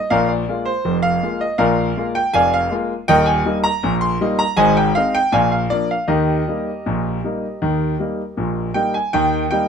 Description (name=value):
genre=ragtime piano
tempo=80 BPM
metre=2/4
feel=straight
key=Eb major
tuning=A4 = 440 Hz
part: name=clear concert grand piano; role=solo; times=0.0-9.7 s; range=Eb1 to C6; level=-16 LUFS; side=equal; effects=none
room=light reverb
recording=minimal, uncompressed stereo recording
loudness=-16 LUFS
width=side -7 dB against mid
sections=0.0-9.1 A section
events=none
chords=0.1 Bb7; 3.1 Eb; 4.6 Ab; 5.3 Bb; 6.1 Eb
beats=| 0.11 0.85 | 1.60 2.34 | 3.09 3.83 | 4.58 5.33 | 6.09 6.85 | 7.61 8.36 | 9.12